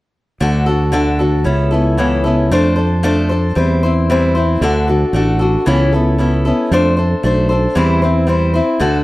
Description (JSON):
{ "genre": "rock", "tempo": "114 BPM", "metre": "4/4", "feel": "straight", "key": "unclear", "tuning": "A4 = 439 Hz", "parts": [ { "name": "picked acoustic archtop guitar", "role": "accompaniment", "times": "0.4-9.0 s", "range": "C#3 to C5", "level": "-14 LUFS", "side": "left 1 dB", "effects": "none" }, { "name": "fingered electric bass", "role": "bass", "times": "0.4-9.0 s", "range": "A1 to F2", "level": "-15 LUFS", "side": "right 1 dB", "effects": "none" } ], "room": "light reverb, studio reverb", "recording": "dark, warm production", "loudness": "-12 LUFS", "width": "side -18 dB against mid", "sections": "0.4-4.6 A section; 4.6-9.0 B section", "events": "none", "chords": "0.4 D; 1.5 Aadd9/C#; 2.5 F6; 3.6 C/E; 4.6 D; 5.7 Aadd9/C#; 6.7 F6; 7.8 C/E" }